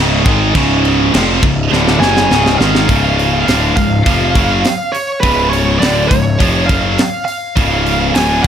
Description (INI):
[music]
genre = heavy metal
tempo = 103 BPM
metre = 4/4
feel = straight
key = unclear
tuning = A4 = 439 Hz
[part]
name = heavy high-gain guitar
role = riff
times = 0.0-8.5 s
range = C#2 to G#3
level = -18 LUFS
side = right 13 dB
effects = distortion
[part]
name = overdriven electric guitar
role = riff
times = 0.0-2.9 s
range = C#2 to G#3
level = -17 LUFS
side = right 1 dB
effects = none
[part]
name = scooped high-gain guitar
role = riff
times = 0.0-8.5 s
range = C#2 to G#3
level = -18 LUFS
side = left 11 dB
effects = distortion
[part]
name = fuzz picked electric bass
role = bass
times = 0.0-8.5 s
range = C#1 to G#1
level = -16 LUFS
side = equal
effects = overdrive
[part]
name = tight metal drum kit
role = drums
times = 0.3-8.5 s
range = crash cymbal, hi-hat, kick drum, snare drum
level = -16 LUFS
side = equal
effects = none
[part]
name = high-gain lead guitar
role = melody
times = 2.0-8.5 s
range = B4 to G#5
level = -17 LUFS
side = equal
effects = distortion, tape echo
[sound]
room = light reverb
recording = none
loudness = -10 LUFS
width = side -9 dB against mid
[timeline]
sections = 0.0-2.9 A section; 2.9-8.5 B section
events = drum fill 1.7-2.9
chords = 0.0 C#